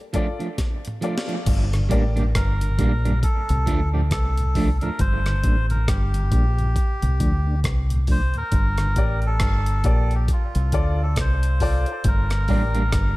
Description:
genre	dub reggae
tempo	68 BPM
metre	4/4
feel	swing 59% on 16ths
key	G minor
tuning	A4 = 440 Hz
part	warm upright piano	stabs	0.0-2.2, 9.0-12.8 s	F4 to D5	-31 LUFS	left 4 dB	dub echo
part	electric guitar at the edge of break-up	accompaniment	0.1-4.9, 12.5-12.8 s	F3 to D4	-29 LUFS	right 3 dB	dub echo
part	breakbeat sampler-style drum kit	drums	0.1-13.2 s	crash cymbal, hi-hat, kick drum, rim click, snare drum, toms	-23 LUFS	equal	none
part	deep dub fingered electric bass	bass	1.5-13.2 s	G1 to D2	-21 LUFS	equal	none
part	mellow tonewheel organ	accompaniment	1.7-8.9 s	D2 to D4	-30 LUFS	left 1 dB	chorus vibrato
part	melodica	melody	2.2-13.2 s	F4 to C5	-29 LUFS	equal	dub echo
room	digital ambience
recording	echo-heavy mix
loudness	-19 LUFS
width	side -19 dB against mid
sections	0.0-1.5 A section; 1.5-13.2 B section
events	break 0.0-1.5; drum fill 0.6-1.5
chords	0.0 Dm; 1.5 Gm; 3.2 Dm; 5.0 Gm; 6.8 Dm; 8.5 Gm; 10.3 Dm; 12.0 Gm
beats	0.58 | 1.47 2.35 3.23 4.11 | 5.00 5.88 6.76 7.64 | 8.52 9.40 10.28 11.16 | 12.05 12.93

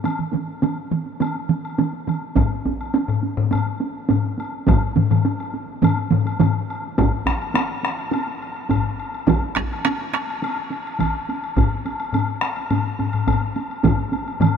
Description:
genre	japanese traditional, taiko drum ensemble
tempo	104 BPM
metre	4/4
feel	straight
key	none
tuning	none
part	taiko ensemble	percussion	0.0-14.5 s	none	-25 LUFS	right 4 dB	none
part	taiko ensemble	percussion	0.0-14.5 s	none	-23 LUFS	right 6 dB	none
part	woodblock	percussion	0.1-14.5 s	none	-29 LUFS	left 4 dB	none
part	solo taiko drums	percussion	2.4-14.5 s	none	-23 LUFS	left 6 dB	none
part	taiko ensemble	percussion	2.4-14.0 s	none	-23 LUFS	right 1 dB	none
room	moderate huge ambient reverb, RT60 8.2 s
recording	minimal, uncompressed stereo recording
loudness	-19 LUFS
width	side -7 dB against mid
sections	0.0-7.0 A section; 7.0-14.6 B section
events	none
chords	none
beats	| 0.05 0.63 1.21 1.79 | 2.37 2.94 3.52 4.10 | 4.68 5.25 5.83 6.41 | 6.98 7.56 8.13 8.70 | 9.28 9.85 10.42 10.99 | 11.56 12.14 12.71 13.28 | 13.84 14.41

